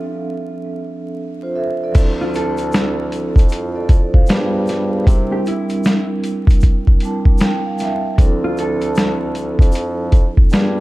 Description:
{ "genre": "lo-fi hip hop", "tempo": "77 BPM", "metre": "4/4", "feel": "swing 60% on 16ths", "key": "D minor", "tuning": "A4 = 440 Hz", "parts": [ { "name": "vibraphone with soft mallets", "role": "accompaniment", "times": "0.0-10.8 s", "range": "F3 to A5", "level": "-21 LUFS", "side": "right 2 dB", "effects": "cassette tape" }, { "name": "boom bap sampler-style drum kit", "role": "drums", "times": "1.9-10.7 s", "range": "crash cymbal, hi-hat, kick drum, snare drum", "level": "-13 LUFS", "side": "equal", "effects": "none" }, { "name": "mellow bassoon", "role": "bass", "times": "2.0-10.8 s", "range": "D2 to C3", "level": "-23 LUFS", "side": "equal", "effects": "none" }, { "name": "egg shaker", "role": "percussion", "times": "2.0-10.7 s", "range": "none", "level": "-44 LUFS", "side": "left 5 dB", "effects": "none" }, { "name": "mellow electric guitar", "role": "melody", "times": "2.2-9.2 s", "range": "E4 to A4", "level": "-26 LUFS", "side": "right 2 dB", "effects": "spring reverb, tape echo" } ], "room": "small room reverb", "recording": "vinyl crackle", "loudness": "-14 LUFS", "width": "side -18 dB against mid", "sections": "0.0-1.9 A section; 1.9-10.8 B section", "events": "break 0.0-1.9", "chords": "0.0 Dm9; 4.3 G7b9; 5.1 C9; 8.2 Dm9" }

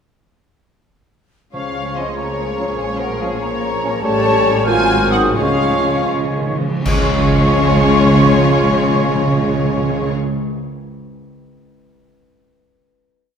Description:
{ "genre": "classical, dramatic, fast romantic movement for symphony orchestra", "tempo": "76-99 BPM (dotted quarters)", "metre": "6/8", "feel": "rubato", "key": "Db major", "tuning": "A4 = 441 Hz", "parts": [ { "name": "warm symphonic violin section", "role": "melody", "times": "1.5-10.1 s", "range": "Ab4 to Ab5", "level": "-23 LUFS", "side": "left 4 dB", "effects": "none" }, { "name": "bright large flute ensemble", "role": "second line", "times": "1.5-10.1 s", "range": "F5 to F6", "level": "-23 LUFS", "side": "equal", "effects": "none" }, { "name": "mellow clarinet", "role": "second line", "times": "1.5-10.1 s", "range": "F4 to Ab4", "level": "-26 LUFS", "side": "right 1 dB", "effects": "none" }, { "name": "warm oboe", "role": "second line", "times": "1.5-10.1 s", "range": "C5 to C#5", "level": "-26 LUFS", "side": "equal", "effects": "none" }, { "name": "warm symphonic violin section", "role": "second line", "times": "1.5-10.1 s", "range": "F4 to Db5", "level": "-28 LUFS", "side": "left 3 dB", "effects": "none" }, { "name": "rich symphonic viola section", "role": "accompaniment", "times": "1.5-10.1 s", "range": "G3 to Db4", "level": "-24 LUFS", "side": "left 1 dB", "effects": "none" }, { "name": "warm bassoon", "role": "accompaniment", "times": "1.5-10.1 s", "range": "F3 to Bb3", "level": "-25 LUFS", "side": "right 1 dB", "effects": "none" }, { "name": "mellow French horn section", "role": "sustained chords", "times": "1.5-10.1 s", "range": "F3 to F4", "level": "-24 LUFS", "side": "left 3 dB", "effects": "none" }, { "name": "rich symphonic double bass section", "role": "bass", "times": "1.5-10.1 s", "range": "Ab1 to Db2", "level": "-23 LUFS", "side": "equal", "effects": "none" }, { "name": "warm symphonic cello section", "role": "bass", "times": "1.5-10.1 s", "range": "Ab2 to F3", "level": "-24 LUFS", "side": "right 3 dB", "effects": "none" }, { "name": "timpani", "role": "percussion", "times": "1.5-2.1, 5.4-10.2 s", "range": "Db3", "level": "-21 LUFS", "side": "right 2 dB", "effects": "none" }, { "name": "clear trombone section", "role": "sustained chords", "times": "2.0-10.1 s", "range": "F3 to Db4", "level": "-26 LUFS", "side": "equal", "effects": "none" }, { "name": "cymbal swell, clash cymbals and concert bass drum", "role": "percussion", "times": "4.0-7.9 s", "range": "none", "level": "-24 LUFS", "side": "equal", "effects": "none" } ], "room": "wet scoring stage reverb, RT60 1.7 s", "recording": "minimal, uncompressed stereo recording", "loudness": "-13 LUFS", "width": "side -7 dB against mid", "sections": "1.5-6.9 A section; 6.9-10.0 final chord", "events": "slowing down 3.4-6.9; timpani fill 5.4-6.9; band accent 6.9-7.4", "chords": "1.5 Db; 2.8 Bbm7; 4.0 A7; 4.7 Ab9; 5.4 Db" }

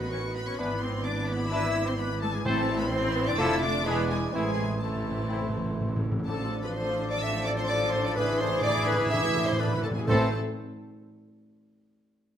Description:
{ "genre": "quick classical-period movement for symphony orchestra", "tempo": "126 BPM", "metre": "4/4", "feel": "straight", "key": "A minor", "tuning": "A4 = 440 Hz", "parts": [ { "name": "warm chamber violin section", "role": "melody", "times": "0.0-10.4 s", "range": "G#5 to E6", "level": "-36 LUFS", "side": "left 1 dB", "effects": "none" }, { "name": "clear clarinet", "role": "second line", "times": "0.0-10.3 s", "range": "E4 to E5", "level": "-34 LUFS", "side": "left 1 dB", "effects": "none" }, { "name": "large flute ensemble", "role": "second line", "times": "0.0-10.4 s", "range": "G#4 to E5", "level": "-36 LUFS", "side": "left 2 dB", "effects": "none" }, { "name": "mellow oboe", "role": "second line", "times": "0.0-10.3 s", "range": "B4 to D5", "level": "-39 LUFS", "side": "left 2 dB", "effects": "none" }, { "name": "warm chamber violin section", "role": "second line", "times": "0.0-10.3 s", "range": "C4 to E5", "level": "-38 LUFS", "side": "left 1 dB", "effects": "none" }, { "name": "mellow bassoon", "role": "accompaniment", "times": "0.0-10.3 s", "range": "E3 to C4", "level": "-36 LUFS", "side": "right 2 dB", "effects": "none" }, { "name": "warm chamber viola section", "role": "accompaniment", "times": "0.0-10.4 s", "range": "D3 to F4", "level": "-36 LUFS", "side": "equal", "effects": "none" }, { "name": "rich chamber double bass section", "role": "bass", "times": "0.0-10.4 s", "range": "E1 to A1", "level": "-33 LUFS", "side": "right 1 dB", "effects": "none" }, { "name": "warm chamber cello section", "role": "bass", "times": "0.0-10.4 s", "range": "A2 to E4", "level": "-34 LUFS", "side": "right 2 dB", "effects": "none" }, { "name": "clear French horn section", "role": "sustained chords", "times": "0.6-10.3 s", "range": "E3 to D4", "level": "-36 LUFS", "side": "left 3 dB", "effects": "none" }, { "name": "mellow trumpet", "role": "stabs", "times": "0.6-10.3 s", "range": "E4 to C5", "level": "-35 LUFS", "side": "right 1 dB", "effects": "none" }, { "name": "timpani", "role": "percussion", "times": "2.5-10.3 s", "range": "A2", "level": "-33 LUFS", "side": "equal", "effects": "none" } ], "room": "moderate recital hall reverb, RT60 1.4 s", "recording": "none", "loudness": "-25 LUFS", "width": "side -9 dB against mid", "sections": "0.0-6.3 A section; 6.3-10.1 B section; 10.1-12.0 C section", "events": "timpani fill 4.3-6.3, 8.2-10.1", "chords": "0.0 B7/A; 0.6 E7/G#; 2.5 Am; 3.4 Dm/F; 3.9 E7; 4.3 Am; 6.3 Dm/A; 8.2 E7/A; 10.1 Am" }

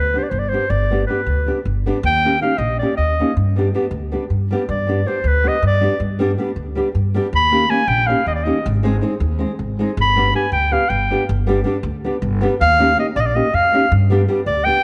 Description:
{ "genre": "balkan folk, Balkan wedding band", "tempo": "318 BPM (eighths)", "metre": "7/8", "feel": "straight", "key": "G phrygian dominant", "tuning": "A4 = 440 Hz", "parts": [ { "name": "warm clarinet", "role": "melody", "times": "0.0-14.8 s", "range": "B4 to B5", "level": "-20 LUFS", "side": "equal", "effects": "none" }, { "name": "upright bass", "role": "bass", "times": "0.0-14.7 s", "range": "G1 to G2", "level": "-22 LUFS", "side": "equal", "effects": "none" }, { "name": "nylon-string guitar", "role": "accompaniment", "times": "0.1-14.8 s", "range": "G3 to Ab4", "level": "-24 LUFS", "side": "equal", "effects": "none" } ], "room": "light reverb", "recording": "nothing above 10.8 kHz", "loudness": "-18 LUFS", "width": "mono", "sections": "0.0-14.8 A section", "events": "clarinet solo 0.0-14.8", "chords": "0.0 G; 2.0 Eb7; 3.4 G; 7.3 Eb7; 8.7 Ab; 10.0 G; 12.6 Eb7; 13.9 G" }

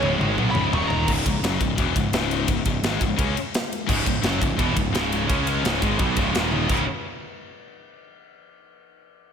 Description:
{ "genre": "heavy metal", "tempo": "171 BPM", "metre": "4/4", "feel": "straight", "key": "C# minor", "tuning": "A4 = 440 Hz", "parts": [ { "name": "high-gain lead guitar", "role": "melody", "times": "0.0-1.1 s", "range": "A#5 to C#6", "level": "-28 LUFS", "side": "right 1 dB", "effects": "distortion, slapback echo, tape echo" }, { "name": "scooped high-gain guitar", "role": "riff", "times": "0.0-6.8 s", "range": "C#2 to C#4", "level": "-27 LUFS", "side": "left 9 dB", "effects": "distortion, slapback echo" }, { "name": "scooped high-gain guitar", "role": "riff", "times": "0.0-1.1, 3.9-6.8 s", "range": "C#2 to C#4", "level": "-28 LUFS", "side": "right 9 dB", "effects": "distortion, slapback echo" }, { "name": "sludgy distorted guitar", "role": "riff", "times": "0.0-6.8 s", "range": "C#2 to C#4", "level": "-28 LUFS", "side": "left 1 dB", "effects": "overdrive, slapback echo" }, { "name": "overdriven picked electric bass", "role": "bass", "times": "0.0-6.9 s", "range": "C#1 to C#2", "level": "-27 LUFS", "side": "equal", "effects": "none" }, { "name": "tight metal drum kit", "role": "drums", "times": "0.0-6.8 s", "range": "crash cymbal, kick drum, ride cymbal, snare drum, toms", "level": "-26 LUFS", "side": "equal", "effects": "none" } ], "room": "moderate lush hall reverb, RT60 2.0 s", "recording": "big arena sound", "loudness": "-20 LUFS", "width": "side -7 dB against mid", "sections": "0.0-1.1 A section; 1.1-6.7 B section; 6.7-8.1 C section", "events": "drum fill 0.0-1.1, 6.5; lead electric guitar solo 0.0-1.1", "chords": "0.0 C#5; 0.7 D#5; 1.1 C#m; 6.3 D#5; 6.7 C#5" }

